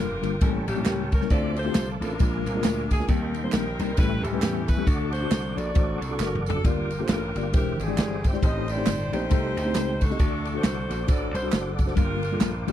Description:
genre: uptempo gospel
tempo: 135 BPM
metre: 4/4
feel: swing 59% on 8ths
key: unclear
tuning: A4 = 439 Hz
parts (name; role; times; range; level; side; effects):
- bright saxophone section; melody; 0.0-12.7 s; Bb3 to Eb5; -31 LUFS; equal; none
- mellow tine electric piano; accompaniment; 0.0-12.7 s; G2 to Eb5; -29 LUFS; left 4 dB; medium stereo tremolo
- tonewheel organ; sustained chords; 0.0-12.7 s; Eb4 to D6; -37 LUFS; right 2 dB; slow rotary speaker, chorus vibrato
- slap bass; bass; 0.0-12.7 s; E1 to E2; -30 LUFS; equal; none
- swinging big-band drum kit; drums; 0.2-12.7 s; kick drum, ride cymbal, snare drum, toms; -24 LUFS; equal; none
- tambourine and handclaps; percussion; 0.2-12.7 s; none; -40 LUFS; right 13 dB; none
room: little or no reverb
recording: dry, close 1970s-style studio recording, lossy compression artefacts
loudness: -22 LUFS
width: side -11 dB against mid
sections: 0.0-12.7 A section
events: drum fill 6.2-6.6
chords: 0.4 A7b9; 1.3 Dm7; 2.2 Bb7; 3.1 Eb6; 4.0 A7; 4.9 D; 6.6 Gm7; 7.5 E7alt; 8.4 Am7b5; 10.2 D; 12.0 Gm7

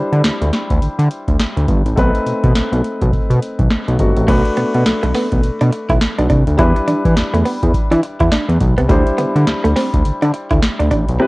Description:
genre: R&B, new jack swing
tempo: 104 BPM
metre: 4/4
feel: swing 60% on 16ths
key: unclear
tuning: A4 = 443 Hz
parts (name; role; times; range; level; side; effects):
- warm grand piano; accompaniment; 0.0-11.3 s; G3 to C5; -21 LUFS; left 1 dB; cassette tape
- fat analog bass; bass; 0.0-11.2 s; G1 to E3; -15 LUFS; equal; transformer saturation
- booming analog drum machine; drums; 0.1-11.2 s; crash cymbal, hi-hat, kick drum, snare drum; -17 LUFS; equal; vintage 12-bit sampler grit, cassette tape
- direct-recorded clean electric guitar; riff; 4.3-11.3 s; A3 to E4; -19 LUFS; right 2 dB; lush chorus, cassette tape
room: little or no reverb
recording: home recording on cassette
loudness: -13 LUFS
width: side -23 dB against mid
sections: 0.0-4.3 A section; 4.3-11.3 B section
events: none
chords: 0.0 D9sus4; 2.0 B7b9; 4.3 Bm7; 6.6 Em7; 8.9 D9sus4

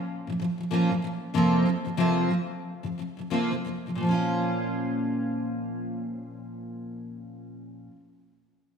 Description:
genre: pop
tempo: 84-98 BPM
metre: 4/4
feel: swing 60% on 16ths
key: Bb minor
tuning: A4 = 440 Hz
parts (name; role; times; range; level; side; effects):
- picked steel-string acoustic guitar; accompaniment; 0.0-8.0 s; F2 to F4; -26 LUFS; equal; double-tracked left and right
room: wet lush hall reverb, RT60 2.3 s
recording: rough home demo mix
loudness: -25 LUFS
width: side -7 dB against mid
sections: 0.0-4.0 A section; 4.0-6.9 B section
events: slowing down 0.0-4.0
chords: 0.0 Bbm; 1.3 Fsus4; 4.0 Bbm

